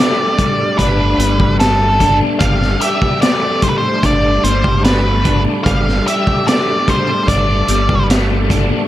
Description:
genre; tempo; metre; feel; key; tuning
psychedelic rock; 74 BPM; 4/4; straight; G major; A4 = 441 Hz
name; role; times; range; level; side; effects
octave-fuzz lead guitar; melody; 0.0-8.1 s; A4 to F5; -17 LUFS; equal; distortion, tape echo
tonewheel organ; sustained chords; 0.0-8.9 s; G3 to A4; -25 LUFS; right 7 dB; slow rotary speaker, chorus vibrato
crunchy overdriven guitar; riff; 0.0-8.9 s; G3 to G4; -18 LUFS; left 2 dB; rotary speaker
crunchy breakbeat drum kit; drums; 0.0-8.7 s; hi-hat, kick drum, snare drum; -17 LUFS; equal; none
congas; percussion; 0.4-8.9 s; none; -27 LUFS; left 16 dB; none
deep dub fingered electric bass; bass; 0.8-8.7 s; G1; -17 LUFS; equal; none
room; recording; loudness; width
studio reverb; none; -11 LUFS; side -13 dB against mid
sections
0.0-8.9 A section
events
none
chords
0.0 Gsus2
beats
0.80 1.61 | 2.42 3.23 4.04 4.85 | 5.66 6.47 7.29 8.10

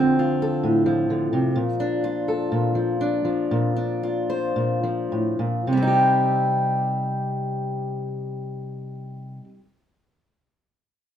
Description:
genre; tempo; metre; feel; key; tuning
folk; 53-67 BPM; 4/4; straight; C dorian; A4 = 440 Hz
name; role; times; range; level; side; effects
fingerpicked steel-string acoustic guitar; solo; 0.0-9.6 s; A2 to C5; -21 LUFS; equal; none
room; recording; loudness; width
moderate studio reverb, RT60 0.5 s; dark, warm production; -21 LUFS; side -9 dB against mid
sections
0.0-5.7 A section; 5.7-10.2 B section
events
slowing down 0.0-5.7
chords
0.0 Dm7; 1.6 Bbmaj7; 5.7 Cm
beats
0.63 | 1.56 2.52 3.52 4.57 | 5.67 6.82 7.96 9.10

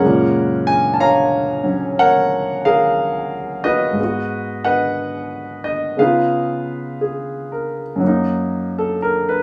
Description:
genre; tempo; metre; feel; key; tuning
solo jazz; 60 BPM; 4/4; swing 66% on 8ths, rubato; F# major; A4 = 438 Hz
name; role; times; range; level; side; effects
warm grand piano; solo; 0.0-9.4 s; F#2 to A#5; -18 LUFS; equal; none
room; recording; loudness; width
moderate studio reverb, RT60 0.5 s; studio reverb; -18 LUFS; mono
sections
0.0-8.0 A section; 8.0-9.4 B section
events
grand piano solo 8.0-9.4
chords
0.0 F#maj9; 4.0 G#m7; 6.0 C#9; 8.0 F#6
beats
| 0.01 1.00 1.99 2.99 | 3.98 4.98 5.99 7.01 | 8.02 9.01

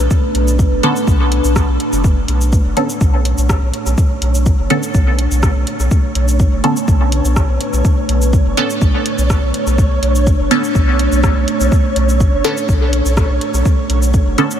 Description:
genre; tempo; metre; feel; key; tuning
dub techno; 124 BPM; 4/4; straight; B minor; A4 = 440 Hz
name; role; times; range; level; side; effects
deep dark ambient pad; sustained chords; 0.0-14.6 s; A3 to F#5; -20 LUFS; right 1 dB; chorus, built-in reverb, sidechain pumping
pure sine sub bass; bass; 0.0-14.4 s; F#1 to B1; -16 LUFS; equal; sidechain pumping
deep house drum kit; drums; 0.1-14.6 s; cabasa, hi-hat, rim click; -26 LUFS; equal; dub echo
electronic kick drum; drums; 0.1-14.2 s; none; -13 LUFS; equal; none
filtered dub chord stab; stabs; 0.8-14.5 s; D3 to A4; -21 LUFS; right 1 dB; phaser, sidechain pumping, dub echo
flickering grainy texture; texture; 2.5-14.6 s; C#5; -25 LUFS; right 2 dB; built-in reverb, sidechain pumping
room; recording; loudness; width
light reverb; none; -12 LUFS; side -9 dB against mid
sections
0.0-14.6 A section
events
none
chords
0.0 Bm9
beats
| 0.11 0.59 1.07 1.56 | 2.04 2.53 3.01 3.49 | 3.98 4.46 4.95 5.43 | 5.91 6.40 6.88 7.37 | 7.85 8.33 8.82 9.30 | 9.78 10.27 10.75 11.24 | 11.72 12.20 12.69 13.17 | 13.65 14.14

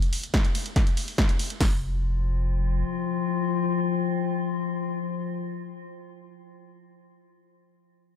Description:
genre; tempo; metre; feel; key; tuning
driving peak-time techno; 142 BPM; 4/4; straight; unclear; A4 = 440 Hz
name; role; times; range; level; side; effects
punchy analog drum machine; drums; 0.0-1.6 s; hi-hat, ride cymbal, snare drum; -29 LUFS; equal; sidechain pumping on hats, sidechain pumping on cymbals
punchy analog drum machine; drums; 0.3-1.7 s; hi-hat, kick drum, snare drum; -23 LUFS; equal; none
warm sub bass; bass; 1.6-2.8 s; F1; -27 LUFS; equal; sidechain pumping, low-pass filter
metallic inharmonic drone; drone; 2.3-5.8 s; F3; -28 LUFS; left 7 dB; chorus, built-in reverb, sidechain pumping
room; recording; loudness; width
moderate lush hall reverb, RT60 1.9 s; dreamy mix soaked in reverb; -24 LUFS; side -9 dB against mid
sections
0.0-1.6 A section; 1.6-5.0 B section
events
drop 0.0-1.6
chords
none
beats
0.34 0.76 1.18 | 1.61 2.03 2.45 2.87 | 3.30 3.72 4.14 4.56

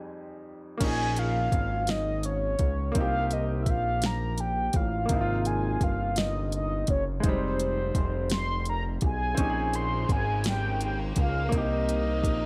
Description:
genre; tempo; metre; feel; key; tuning
slow six-eight R&B; 56 BPM (dotted quarters); 6/8; straight; Bb dorian; A4 = 440 Hz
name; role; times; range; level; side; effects
mellow horn-like synth lead; melody; 0.0-12.5 s; C5 to C6; -33 LUFS; equal; chorus, slapback echo
clear baby grand piano; accompaniment; 0.0-12.5 s; F2 to Ab4; -36 LUFS; equal; none
fat analog bass; bass; 0.8-12.5 s; F1 to Db2; -32 LUFS; equal; none
smooth R&B drum kit; drums; 0.8-12.4 s; crash cymbal, hi-hat, kick drum, snare drum; -31 LUFS; equal; none
clear symphonic string section; sustained chords; 9.4-12.5 s; C3 to Eb4; -41 LUFS; equal; none
room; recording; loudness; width
digital ambience; none; -28 LUFS; mono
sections
0.8-12.5 A section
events
break 0.0-0.8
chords
0.0 Fm9; 0.8 Bbm7; 3.0 Cm7; 5.1 Ab6; 7.2 Fm9; 9.4 Bbm11; 11.5 Cm7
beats
| 0.81 1.88 | 2.95 4.02 | 5.09 6.17 | 7.24 8.31 | 9.38 10.45 | 11.52

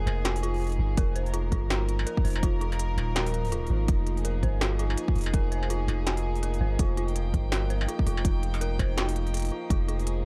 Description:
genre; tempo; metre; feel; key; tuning
half-time drum and bass; 165 BPM; 4/4; swing 59% on 16ths, half-time; F minor; A4 = 440 Hz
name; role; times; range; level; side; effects
warm chamber string section; sustained chords; 0.0-10.2 s; F3 to G5; -38 LUFS; equal; vintage 12-bit sampler grit, sidechain pumping
dark detuned synth bell; arpeggios; 0.0-10.2 s; F4 to C5; -38 LUFS; equal; chorus, tape echo
long sustained 808-style bass; bass; 0.0-10.2 s; Eb1 to Ab1; -30 LUFS; equal; none
industrial drum kit; drums; 0.1-10.2 s; hi-hat, snare drum, struck metal; -35 LUFS; equal; none
electronic kick drum; drums; 1.0-9.8 s; none; -28 LUFS; equal; overdrive
metallic inharmonic drone; texture; 9.7-10.2 s; none; barely audible; none; none
room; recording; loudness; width
little or no reverb; dark, warm production; -27 LUFS; mono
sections
0.0-10.2 A section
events
none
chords
0.0 Fmadd9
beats
0.25 0.61 | 0.97 1.34 1.70 2.07 | 2.43 2.79 3.16 3.52 | 3.88 4.25 4.61 4.97 | 5.34 5.70 6.07 6.43 | 6.79 7.16 7.52 7.88 | 8.25 8.61 8.97 9.34 | 9.70 10.07

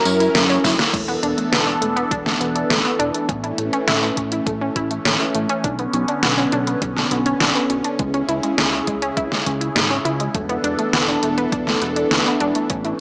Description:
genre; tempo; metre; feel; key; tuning
synthwave; 102 BPM; 4/4; straight; unclear; A4 = 440 Hz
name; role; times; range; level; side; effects
phased analog pad; sustained chords; 0.0-13.0 s; C#3 to A#4; -25 LUFS; equal; phaser, chorus, sidechain pumping
analog pluck; arpeggios; 0.1-13.0 s; G#3 to E4; -26 LUFS; equal; chorus, digital delay
fat analog bass; bass; 0.1-12.9 s; E1 to F#2; -29 LUFS; equal; none
pop drum kit; drums; 0.1-13.0 s; crash cymbal, hi-hat, snare drum, tambourine; -23 LUFS; equal; overdrive
electronic kick drum; drums; 0.6-12.8 s; none; -29 LUFS; equal; overdrive
room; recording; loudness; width
moderate plate reverb, RT60 1.4 s; small speaker sound; -20 LUFS; mono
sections
0.9-13.0 A section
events
drum fill 0.6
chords
0.0 F#7; 0.9 E7sus4; 3.3 A; 5.6 Bmadd9; 8.0 C#m; 10.3 E7sus4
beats
0.35 | 0.94 1.52 2.11 2.70 | 3.29 3.88 4.46 5.05 | 5.64 6.23 6.82 7.41 | 7.99 8.58 9.17 9.76 | 10.35 10.94 11.52 12.11 | 12.70

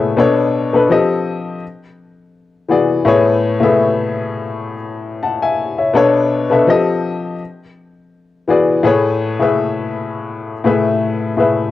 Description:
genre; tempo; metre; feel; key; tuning
R&B; 83 BPM; 4/4; swing 54% on 16ths; unclear; A4 = 440 Hz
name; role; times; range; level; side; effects
warm upright piano; solo; 0.0-11.7 s; A2 to C#6; -13 LUFS; left 3 dB; none
room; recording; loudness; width
moderate spring reverb, RT60 1.6 s, studio ambience; home recording on cassette; -13 LUFS; side -13 dB against mid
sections
0.0-11.7 A section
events
upright piano fill 0.0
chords
0.2 Bm7; 0.9 F9; 1.6 E9; 3.1 Amaj7; 6.0 Bm7; 6.7 F9; 7.4 E9; 8.8 Amaj7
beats
| 0.17 0.90 1.62 2.34 | 3.06 3.79 4.51 5.23 | 5.96 6.68 7.40 8.12 | 8.85 9.57 10.29 11.02

